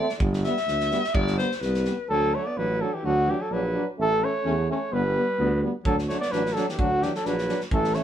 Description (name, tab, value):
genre	balkan folk, Balkan brass band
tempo	128 BPM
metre	2/4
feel	swing 54% on 16ths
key	D major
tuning	A4 = 436 Hz
part	warm alto saxophone	second line	0.0-8.0 s	D3 to E5	-31 LUFS	left 3 dB	none
part	clear French horn	accompaniment	0.0-8.0 s	B3 to D4	-32 LUFS	left 4 dB	none
part	clear euphonium	accompaniment	0.0-8.0 s	E3 to A3	-33 LUFS	right 6 dB	none
part	loose indie drum kit	percussion	0.1-1.9, 5.9-8.0 s	kick drum, snare drum	-30 LUFS	right 1 dB	none
part	mellow tuba	bass	0.2-8.0 s	G1 to E2	-28 LUFS	right 1 dB	none
part	mellow flugelhorn	melody	2.1-8.0 s	F#4 to D5	-25 LUFS	right 1 dB	none
room	moderate studio reverb, RT60 0.6 s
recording	band playing live in one room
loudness	-22 LUFS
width	side -10 dB against mid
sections	0.0-2.1 A section; 2.1-8.0 B section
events	alto saxophone solo 0.0-2.1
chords	0.2 G; 2.1 D; 4.0 A; 4.9 G; 5.9 D